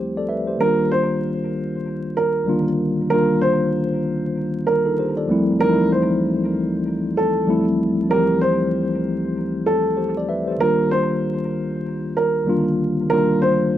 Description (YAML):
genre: hip hop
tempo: 96 BPM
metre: 4/4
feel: swing 59% on 16ths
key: C dorian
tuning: A4 = 440 Hz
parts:
  - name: mellow tine electric piano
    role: accompaniment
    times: 0.0-13.8 s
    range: C2 to E5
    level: -20 LUFS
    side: left 1 dB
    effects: medium stereo tremolo, high-pass filter, low-pass filter
  - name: dark upright piano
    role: melody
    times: 0.6-13.8 s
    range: A4 to C5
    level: -22 LUFS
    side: right 2 dB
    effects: high-pass filter, low-pass filter, tape echo
room: light reverb, studio ambience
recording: vinyl crackle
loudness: -18 LUFS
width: side -12 dB against mid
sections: 0.6-13.8 A section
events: none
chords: 0.0 Dm11; 0.6 Cm11; 5.3 Dm11; 10.6 Cm11